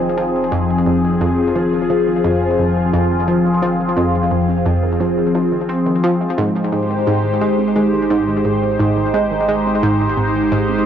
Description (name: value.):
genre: ambient, sequencer-driven space music.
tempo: 87 BPM.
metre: 4/4.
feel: straight.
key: F minor.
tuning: A4 = 442 Hz.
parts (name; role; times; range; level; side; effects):
phased analog pad; sustained chords; 0.0-10.9 s; F3 to C5; -16 LUFS; left 1 dB; phaser, chorus, cassette tape.
wide unison pluck; arpeggios; 0.0-10.8 s; Eb3 to F4; -31 LUFS; right 4 dB; none.
analog pluck; riff; 0.0-10.8 s; F2 to C4; -19 LUFS; right 1 dB; chorus, cassette tape, ping-pong delay.
warm sub bass; bass; 0.0-10.9 s; F1 to Ab1; -37 LUFS; equal; none.
room: wet small room reverb, RT60 0.5 s.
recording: home recording on cassette.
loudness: -14 LUFS.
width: side -9 dB against mid.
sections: 0.0-10.9 A section.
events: fade-in on sub bass 0.0-10.9.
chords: 0.0 Fm7; 6.4 Abmaj7.